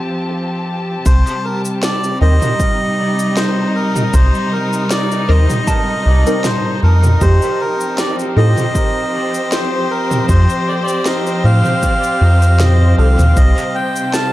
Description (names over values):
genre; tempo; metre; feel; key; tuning
ambient dub; 78 BPM; 4/4; swing 54% on 16ths; C dorian; A4 = 440 Hz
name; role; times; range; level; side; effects
dark chamber string section; sustained chords; 0.0-14.3 s; C3 to A5; -20 LUFS; equal; vintage 12-bit sampler grit
felt-muted upright piano; arpeggios; 0.0-13.4 s; G4 to A5; -27 LUFS; right 3 dB; dub echo
melodica; melody; 1.1-14.3 s; Bb4 to A5; -19 LUFS; equal; dub echo
round analog bass; bass; 1.1-13.6 s; C2 to A2; -10 LUFS; equal; tube saturation
electronic kick drum; drums; 1.1-13.5 s; none; -17 LUFS; equal; overdrive
organic electronic drum kit; drums; 1.1-14.3 s; cabasa, snare drum, toms; -22 LUFS; equal; dub echo
filtered dub chord stab; stabs; 2.2-13.1 s; C4 to Bb4; -25 LUFS; left 1 dB; phaser, ensemble chorus, dub echo
room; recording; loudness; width
light reverb, digital ambience; echo-heavy mix; -12 LUFS; side -15 dB against mid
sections
0.0-1.1 A section; 1.1-14.3 B section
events
break 0.0-1.1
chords
0.0 F; 1.1 Cm7; 7.2 F7; 13.4 Cm